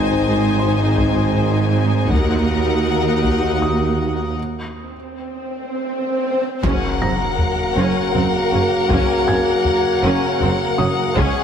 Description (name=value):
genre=cinematic, hybrid orchestral and electronic film score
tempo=53 BPM (dotted quarters)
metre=6/8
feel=straight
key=unclear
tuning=A4 = 440 Hz
part: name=rich chamber violin section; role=melody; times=0.0-11.4 s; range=Gb5 to Ab5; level=-25 LUFS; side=left 7 dB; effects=none
part: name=warm symphonic violin section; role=second line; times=0.0-11.4 s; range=Ab4 to C5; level=-26 LUFS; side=left 4 dB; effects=none
part: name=warm symphonic viola section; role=accompaniment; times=0.0-11.4 s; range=C4 to Eb4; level=-26 LUFS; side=equal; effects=none
part: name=mellow French horn section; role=sustained chords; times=0.0-11.4 s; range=Db3 to Ab4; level=-23 LUFS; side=left 1 dB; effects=none
part: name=mellow tuba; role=bass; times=0.0-11.3 s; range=Gb1 to Eb2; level=-25 LUFS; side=right 3 dB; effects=none
part: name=rich symphonic cello section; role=bass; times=0.0-11.2 s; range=Db2 to Ab2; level=-24 LUFS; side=right 2 dB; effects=none
part: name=rich symphonic double bass section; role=bass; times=0.0-11.2 s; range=Gb1 to Eb2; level=-24 LUFS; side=right 3 dB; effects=none
part: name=felt-muted upright piano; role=texture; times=0.0-11.4 s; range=Ab5 to Bb6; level=-30 LUFS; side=left 1 dB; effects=ping-pong delay
part: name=taiko ensemble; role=drums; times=1.0-11.4 s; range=none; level=-25 LUFS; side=left 1 dB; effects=none
part: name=swell and impact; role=sound effects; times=5.0-8.9 s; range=none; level=-24 LUFS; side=equal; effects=none
part: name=bright trombone section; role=sustained chords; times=6.6-11.4 s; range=F3 to Bb3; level=-26 LUFS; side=right 3 dB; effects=none
room=moderate scoring stage reverb, RT60 2.0 s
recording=heavily compressed radio sound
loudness=-16 LUFS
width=side -8 dB against mid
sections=0.0-6.6 A section; 6.6-11.4 B section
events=break 4.4-6.6; swell 5.0-6.6; drum fill 5.5-6.6; impact 6.6-8.9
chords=0.0 Ab; 2.1 Ebm; 4.4 N.C.; 6.6 Gb